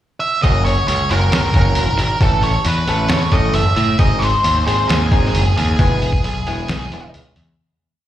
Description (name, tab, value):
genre	quiet-loud alternative rock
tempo	134 BPM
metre	4/4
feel	straight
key	unclear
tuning	A4 = 440 Hz
part	octave-fuzz lead guitar	melody	0.2-7.1 s	G#4 to E5	-20 LUFS	right 1 dB	distortion, slapback echo
part	electric guitar through a small old amp	arpeggios	0.4-7.2 s	E3 to A4	-22 LUFS	equal	lush chorus, slapback echo
part	growling picked electric bass	bass	0.4-7.5 s	E1 to A2	-18 LUFS	equal	overdrive
part	lo-fi sampler-style drum kit	drums	0.4-7.5 s	hi-hat, kick drum, snare drum	-19 LUFS	equal	none
room	light reverb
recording	live gig heard through the venue's PA, recital hall reverb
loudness	-14 LUFS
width	side -12 dB against mid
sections	0.0-0.4 pickup bar; 0.4-7.6 verse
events	fade-out 5.8-7.6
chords	0.4 F#; 2.2 A; 4.0 G#; 5.8 E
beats	0.00 | 0.44 0.88 1.33 1.77 | 2.22 2.66 3.11 3.56 | 4.00 4.45 4.90 5.35 | 5.80 6.25 6.70 7.14